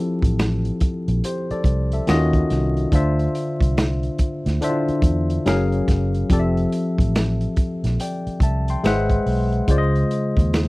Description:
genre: R&B, neo-soul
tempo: 71 BPM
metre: 4/4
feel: swing 63% on 16ths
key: unclear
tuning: A4 = 440 Hz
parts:
  - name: tine electric piano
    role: accompaniment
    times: 0.0-10.7 s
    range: Db3 to C6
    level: -22 LUFS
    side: left 1 dB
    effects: overdrive
  - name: vintage muted fingered electric bass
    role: bass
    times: 0.2-10.7 s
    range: F1 to E2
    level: -21 LUFS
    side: equal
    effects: none
  - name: crunchy breakbeat drum kit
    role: drums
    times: 0.2-10.7 s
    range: finger snaps, hi-hat, kick drum, snare drum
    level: -20 LUFS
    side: equal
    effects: none
room: little or no reverb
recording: dry, close 1970s-style studio recording, vinyl crackle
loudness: -18 LUFS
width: side -21 dB against mid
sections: 0.0-10.7 A section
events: none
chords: 0.0 Fmaj9; 2.1 Ebm9; 2.9 Dm9; 5.5 Gbmaj9; 6.3 Fmaj9; 8.8 Ab7alt; 9.7 Dbmaj9

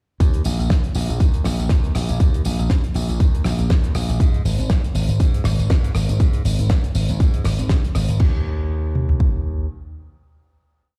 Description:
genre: nu-disco, nu disco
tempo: 120 BPM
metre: 4/4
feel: swing 56% on 16ths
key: unclear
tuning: A4 = 439 Hz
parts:
  - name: slap bass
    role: bass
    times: 0.2-9.7 s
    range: Ab1 to Ab2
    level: -23 LUFS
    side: equal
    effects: sidechain pumping
  - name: damped 70s drum kit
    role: drums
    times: 0.2-8.3 s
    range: crash cymbal, hi-hat, rim click, snare drum, tambourine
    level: -31 LUFS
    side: equal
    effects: none
  - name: house drum kit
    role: drums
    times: 0.2-9.3 s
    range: kick drum, toms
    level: -19 LUFS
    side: equal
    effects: none
room: little or no reverb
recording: played on a big sound system in a bare room, large studio reverb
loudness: -19 LUFS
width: mono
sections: 0.2-8.2 drop; 8.2-11.0 final chord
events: drop 0.2-8.2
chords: none

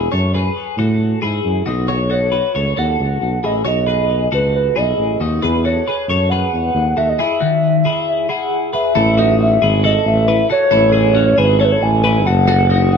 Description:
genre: jangly indie pop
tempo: 136 BPM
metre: 4/4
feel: straight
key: unclear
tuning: A4 = 441 Hz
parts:
  - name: twelve-string electric guitar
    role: arpeggios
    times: 0.0-13.0 s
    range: D#3 to C#5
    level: -19 LUFS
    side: left 3 dB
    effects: phaser, digital delay
  - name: warm tuba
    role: bass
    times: 0.0-13.0 s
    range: F#1 to A2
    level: -16 LUFS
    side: right 1 dB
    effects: none
  - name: hollow clarinet-like synth lead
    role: melody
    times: 2.1-13.0 s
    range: B4 to G#5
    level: -17 LUFS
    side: right 1 dB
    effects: chorus, digital delay
room: moderate studio reverb, RT60 0.9 s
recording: dark, warm production, lossy compression artefacts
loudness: -13 LUFS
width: side -6 dB against mid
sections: 0.0-9.0 A section; 9.0-13.0 B section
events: none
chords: 0.0 F#madd9; 1.7 Badd9; 5.4 E; 9.0 A; 12.3 F#m

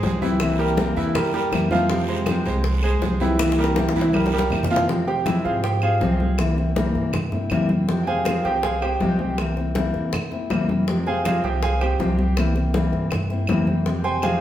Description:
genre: latin, Cuban son and guajira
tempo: 161 BPM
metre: 4/4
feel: straight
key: F harmonic minor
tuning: A4 = 438 Hz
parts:
  - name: fingerpicked steel-string acoustic guitar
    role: accompaniment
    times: 0.0-14.4 s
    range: C3 to G4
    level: -23 LUFS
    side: left 2 dB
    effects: none
  - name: bright concert grand piano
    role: arpeggios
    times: 0.0-14.4 s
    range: E3 to C6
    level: -23 LUFS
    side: right 2 dB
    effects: none
  - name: upright bass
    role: bass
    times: 0.0-14.4 s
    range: C2 to Ab2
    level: -26 LUFS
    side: equal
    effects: none
  - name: bongos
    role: percussion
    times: 0.0-14.4 s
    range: none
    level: -31 LUFS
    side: left 3 dB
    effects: none
  - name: congas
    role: percussion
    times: 0.0-14.4 s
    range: none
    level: -28 LUFS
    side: left 1 dB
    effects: none
  - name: guiro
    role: percussion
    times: 0.0-4.9 s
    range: none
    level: -38 LUFS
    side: right 5 dB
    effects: none
  - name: claves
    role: percussion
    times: 0.4-14.4 s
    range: none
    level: -35 LUFS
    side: right 2 dB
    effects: none
room: wet large studio reverb, RT60 1.3 s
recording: band playing live in one room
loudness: -19 LUFS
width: side -12 dB against mid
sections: 0.0-4.9 A section; 4.9-14.4 B section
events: drum fill 3.4-4.9; grand piano solo 4.9-14.4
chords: 0.4 C7; 1.9 Fmadd9; 3.4 C7; 4.9 Fmadd9; 6.4 C7; 7.9 Fmadd9; 9.4 C7; 10.9 Fmadd9; 12.4 C7; 13.9 Fmadd9

